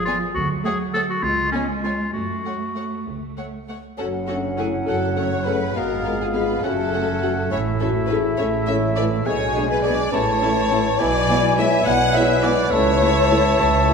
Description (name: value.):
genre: cinematic.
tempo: 69 BPM (dotted quarters).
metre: 6/8.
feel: straight.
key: F# minor.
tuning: A4 = 440 Hz.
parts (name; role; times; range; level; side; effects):
bright clarinet; second line; 0.0-13.9 s; Cb4 to A4; -27 LUFS; left 3 dB; none.
rich studio cello section; bass; 0.0-13.9 s; C#2 to A3; -28 LUFS; right 3 dB; none.
rich studio double bass section; bass; 0.0-13.9 s; F#1 to F#2; -27 LUFS; right 3 dB; none.
warm studio violin section; melody; 0.1-13.9 s; E5 to A5; -36 LUFS; left 3 dB; none.
rich studio violin section; second line; 0.1-13.9 s; F#4 to F#5; -24 LUFS; left 3 dB; none.
warm studio viola section; accompaniment; 0.1-13.9 s; A3 to A4; -30 LUFS; right 1 dB; none.
marimba with soft mallets; melody; 4.0-13.9 s; D4 to D5; -26 LUFS; left 5 dB; none.
bright concert flute; second line; 4.0-13.9 s; E5 to A5; -28 LUFS; left 1 dB; none.
mellow bassoon; accompaniment; 4.0-13.9 s; E3 to A3; -28 LUFS; right 1 dB; none.
mellow French horn section; sustained chords; 4.3-13.9 s; Ab3 to F#4; -29 LUFS; left 3 dB; none.
clear oboe; second line; 4.9-13.9 s; E5 to A5; -27 LUFS; right 1 dB; none.
room: wet concert hall reverb, RT60 2.0 s.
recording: minimal, uncompressed stereo recording.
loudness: -18 LUFS.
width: side -5 dB against mid.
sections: 0.0-4.0 A section; 4.0-13.9 B section.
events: none.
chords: 0.4 D; 1.2 C#5; 2.1 F#m; 5.8 Fdim/Ab; 6.6 F#m; 7.5 A; 9.3 G#dim/B; 10.1 A; 11.0 E7/B; 12.7 A/C#.